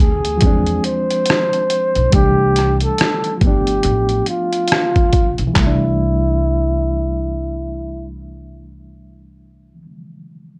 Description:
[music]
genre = lo-fi hip hop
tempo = 70 BPM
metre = 4/4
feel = swing 61% on 16ths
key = C major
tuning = A4 = 441 Hz
[part]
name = breathy flugelhorn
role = melody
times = 0.0-8.1 s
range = E4 to C5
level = -21 LUFS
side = equal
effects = low-pass filter
[part]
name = reed electric piano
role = accompaniment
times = 0.0-10.6 s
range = Eb3 to G4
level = -25 LUFS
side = equal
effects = fast tremolo, cassette tape, low-pass filter
[part]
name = upright bass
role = bass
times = 0.0-9.8 s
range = G1 to E2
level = -22 LUFS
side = equal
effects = none
[part]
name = trip hop sampler-style drum kit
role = drums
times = 0.2-5.8 s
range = handclaps, hi-hat, kick drum, rim click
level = -19 LUFS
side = equal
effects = overdrive, vintage 12-bit sampler grit
[sound]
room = light reverb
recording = cassette tape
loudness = -16 LUFS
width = mono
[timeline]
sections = 0.0-5.6 A section; 5.6-9.0 B section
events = filter sweep 0.0-5.6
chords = 0.4 E7b9b13; 2.1 C6; 3.4 G7; 5.6 C6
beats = 0.41 1.27 | 2.13 2.99 3.84 4.70 | 5.56 6.41 7.27 8.13

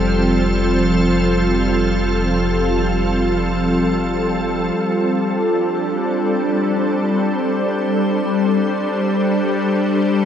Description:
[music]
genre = ambient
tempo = free time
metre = none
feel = none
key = unclear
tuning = A4 = 441 Hz
[part]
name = soft additive organ-like pad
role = sustained chords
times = 0.0-10.2 s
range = F3 to C5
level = -17 LUFS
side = equal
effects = ensemble chorus, built-in reverb, shimmer reverb
[part]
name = warm sub bass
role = bass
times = 0.0-4.7 s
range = F1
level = -23 LUFS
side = equal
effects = none
[part]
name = bowed-like drone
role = drone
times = 0.0-10.2 s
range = G3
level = -23 LUFS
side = equal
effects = built-in reverb
[sound]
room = wet huge ambient reverb, RT60 7.7 s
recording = dreamy mix soaked in reverb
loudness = -16 LUFS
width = side -9 dB against mid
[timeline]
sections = 0.0-4.8 A section; 4.8-10.2 B section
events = none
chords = 0.0 Fadd9; 4.8 G9sus4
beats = free time

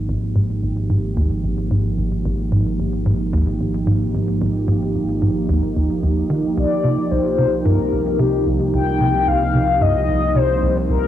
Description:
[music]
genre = ambient, sequencer-driven space music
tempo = 111 BPM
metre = 4/4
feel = straight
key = unclear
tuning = A4 = 440 Hz
[part]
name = sweeping resonant pad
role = sustained chords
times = 0.0-11.1 s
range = F3 to G4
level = -22 LUFS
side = right 3 dB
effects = chorus, cassette tape
[part]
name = fat analog bass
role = bass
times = 0.0-11.1 s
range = Ab1 to C2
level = -24 LUFS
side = equal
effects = none
[part]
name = tight sequencer bass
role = riff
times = 0.1-11.0 s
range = Ab1 to Eb3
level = -20 LUFS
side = equal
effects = wide subtle chorus, cassette tape, ping-pong delay
[part]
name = mellow horn-like synth lead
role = melody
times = 6.6-11.1 s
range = G4 to G5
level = -19 LUFS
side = left 7 dB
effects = analog chorus, cassette tape, ping-pong delay
[sound]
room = moderate spring reverb, RT60 1.1 s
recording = home recording on cassette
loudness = -16 LUFS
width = side -11 dB against mid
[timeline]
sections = 0.0-11.1 A section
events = none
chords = 0.0 Ab5; 6.6 Cm7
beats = | 0.08 0.62 1.16 1.70 | 2.24 2.78 3.33 3.87 | 4.41 4.95 5.49 6.03 | 6.57 7.11 7.65 8.19 | 8.73 9.27 9.81 10.35 | 10.89

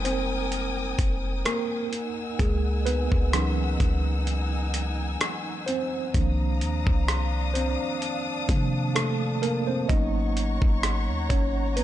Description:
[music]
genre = contemporary R&B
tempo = 64 BPM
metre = 4/4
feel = swing 54% on 16ths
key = unclear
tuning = A4 = 440 Hz
[part]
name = tine electric piano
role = accompaniment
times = 0.0-11.8 s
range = Eb3 to Eb5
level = -29 LUFS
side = right 2 dB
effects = medium stereo tremolo
[part]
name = warm studio string section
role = sustained chords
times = 0.0-11.8 s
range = D4 to Fb6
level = -33 LUFS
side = left 3 dB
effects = sidechain pumping
[part]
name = clean 808-style bass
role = bass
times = 0.0-11.8 s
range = F1 to C3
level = -27 LUFS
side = equal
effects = none
[part]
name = dusty soul sampler-style drum kit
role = drums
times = 0.1-11.8 s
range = hi-hat, kick drum, rim click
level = -27 LUFS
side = equal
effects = none
[sound]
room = little or no reverb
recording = dark, warm production, nothing above 10.6 kHz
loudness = -23 LUFS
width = side -12 dB against mid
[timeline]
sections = 0.0-11.8 A section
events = tine electric piano solo 0.0-11.8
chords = 0.0 Fm11; 1.9 Dbm11; 6.1 Cm11; 9.9 Abm11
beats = 0.52 1.46 | 2.39 3.33 4.27 5.21 | 6.14 7.08 8.02 8.96 | 9.89 10.83 11.77

